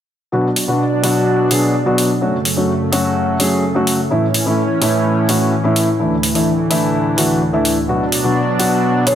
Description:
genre	EDM, festival progressive house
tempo	127 BPM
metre	4/4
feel	straight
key	unclear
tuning	A4 = 440 Hz
part	dark baby grand piano	accompaniment	0.3-9.2 s	A2 to G#4	-16 LUFS	equal	dub echo
part	lush unison pad	sustained chords	0.3-9.2 s	D2 to D4	-19 LUFS	equal	chorus
part	electronic hi-hat	drums	0.6-9.2 s	none	-20 LUFS	equal	none
part	marimba with medium mallets	melody	9.1-9.2 s	C#5	-14 LUFS	equal	none
room	moderate lush hall reverb, RT60 2.1 s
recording	none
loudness	-13 LUFS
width	side -10 dB against mid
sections	0.3-9.2 A section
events	none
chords	0.3 Bm; 2.2 F#m; 4.1 A; 6.0 Dsus2; 7.9 Bm

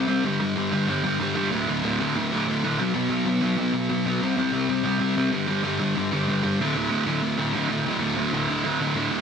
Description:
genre	punk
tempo	189 BPM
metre	4/4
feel	straight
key	D mixolydian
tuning	A4 = 440 Hz
part	sludgy distorted guitar	solo	0.0-9.2 s	D2 to C4	-22 LUFS	equal	overdrive
room	light reverb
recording	none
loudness	-22 LUFS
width	side -6 dB against mid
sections	0.0-9.2 A section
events	none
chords	0.2 G5; 1.5 D5; 2.8 B5; 4.2 C5; 5.3 G5; 6.6 D5

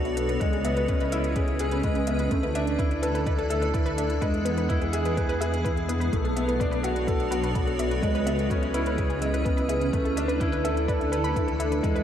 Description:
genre	piano and strings electronica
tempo	126 BPM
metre	4/4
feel	straight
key	unclear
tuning	A4 = 440 Hz
part	granular cloud pad	sustained chords	0.0-12.0 s	B3 to D5	-30 LUFS	equal	built-in reverb, sidechain pumping
part	wide unison pluck	arpeggios	0.0-12.0 s	G#4 to B5	-34 LUFS	left 1 dB	sidechain pumping, tape echo
part	dark concert grand piano	riff	0.0-12.0 s	G#3 to D5	-28 LUFS	equal	lush chorus, tape echo
part	dark detuned saw bass	bass	0.0-12.0 s	B1 to E2	-30 LUFS	equal	sidechain pumping
part	electronic hi-hat	drums	0.1-12.0 s	none	-41 LUFS	equal	none
part	electronic kick drum	drums	0.4-11.9 s	none	-28 LUFS	equal	none
room	wet lush hall reverb, RT60 1.9 s, digital ambience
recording	dreamy mix soaked in reverb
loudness	-23 LUFS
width	side -9 dB against mid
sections	0.0-12.0 A section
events	none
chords	0.4 C#m7; 2.3 Dsus2; 4.2 E; 6.1 Bm7; 8.0 C#m7; 9.9 Dsus2

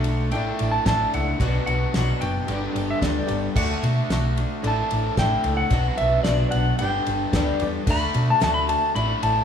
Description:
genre	folk rock and heartland rock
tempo	111 BPM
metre	4/4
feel	straight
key	D major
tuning	A4 = 440 Hz
part	clean lap steel guitar	melody	0.0-9.4 s	D5 to B5	-25 LUFS	left 1 dB	analog delay
part	barky reed electric piano	accompaniment	0.0-9.4 s	D4 to D5	-36 LUFS	right 5 dB	overdrive, fast tremolo
part	picked swing-style acoustic guitar	accompaniment	0.0-9.4 s	G2 to G4	-30 LUFS	left 5 dB	none
part	overdriven semi-hollow guitar	riff	0.0-9.4 s	G2 to G4	-28 LUFS	equal	none
part	hollow-body short-scale fingered electric bass	bass	0.0-9.4 s	F#1 to B2	-24 LUFS	equal	none
part	damped 70s drum kit	drums	0.0-9.4 s	crash cymbal, kick drum, ride cymbal, snare drum	-29 LUFS	equal	none
room	small room ambience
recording	rough home demo mix, small room reverb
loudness	-20 LUFS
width	side -8 dB against mid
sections	0.0-9.4 A section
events	none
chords	0.3 Asus4; 1.4 Bm; 2.5 G; 3.6 D; 4.6 Asus4; 5.7 Bm; 6.8 G; 7.9 D

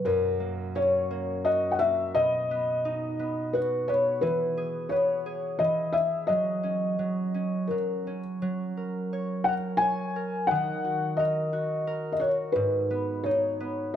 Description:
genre	children's music, lullaby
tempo	86 BPM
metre	3/4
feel	rubato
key	unclear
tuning	A4 = 440 Hz
part	felt-muted upright piano	melody	0.0-14.0 s	A#4 to G#5	-26 LUFS	left 2 dB	none
part	concert harp	accompaniment	0.0-14.0 s	F#2 to C#5	-31 LUFS	right 2 dB	none
room	moderate recital hall reverb, RT60 1.7 s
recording	none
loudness	-25 LUFS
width	side -9 dB against mid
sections	0.0-14.0 A section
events	none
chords	0.0 F#; 2.2 B; 4.2 E; 6.3 F#5; 8.4 F#add9; 10.5 D#m; 12.6 G#m7

